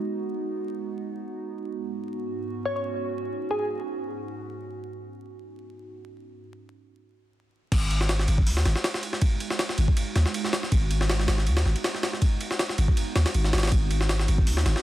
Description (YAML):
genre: drum and bass, jungle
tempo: 160 BPM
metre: 4/4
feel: swing 54% on 16ths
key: G# minor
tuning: A4 = 440 Hz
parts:
  - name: warbly tape-like pad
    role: sustained chords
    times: 0.0-14.8 s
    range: G#2 to F#4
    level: -34 LUFS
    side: right 3 dB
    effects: chorus, built-in reverb, phaser, vintage 12-bit sampler grit
  - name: soft struck synth lead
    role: melody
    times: 2.7-3.7 s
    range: G#4 to C#5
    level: -30 LUFS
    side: equal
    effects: chorus, dub echo
  - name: long sustained 808-style bass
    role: bass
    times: 7.7-14.7 s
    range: G#1 to D#2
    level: -23 LUFS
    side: equal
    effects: none
  - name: jungle sampler-style drum kit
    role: drums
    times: 7.7-14.8 s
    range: crash cymbal, hi-hat, kick drum, ride cymbal, snare drum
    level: -25 LUFS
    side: equal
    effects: overdrive, small room ambience
room: little or no reverb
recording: dense, heavily limited modern master, vinyl crackle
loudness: -23 LUFS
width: side -14 dB against mid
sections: 0.0-7.7 A section; 7.7-14.8 B section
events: break 6.2-7.7; drop 7.7-14.8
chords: 0.0 G#m7; 1.7 Badd9/G#; 7.7 G#m7; 13.7 Badd9/G#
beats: | 0.22 0.59 0.97 1.34 | 1.72 2.09 2.47 2.84 | 3.22 3.59 3.97 4.34 | 4.72 5.09 5.47 5.84 | 6.22 6.59 6.97 7.34 | 7.72 8.09 8.47 8.84 | 9.22 9.59 9.97 10.34 | 10.72 11.09 11.47 11.84 | 12.22 12.59 12.97 13.34 | 13.72 14.09 14.47